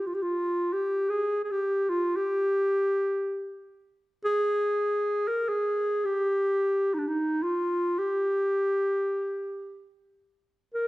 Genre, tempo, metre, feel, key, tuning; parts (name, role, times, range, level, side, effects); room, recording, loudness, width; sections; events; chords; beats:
turkish; free time; G makam kurdi; A4 = 440 Hz
warm clarinet; solo; 0.0-10.9 s; D4 to Bb4; -25 LUFS; equal
wet recital hall reverb, RT60 1.3 s; dark, warm production; -25 LUFS; side -19 dB against mid
0.0-10.9 A section
free time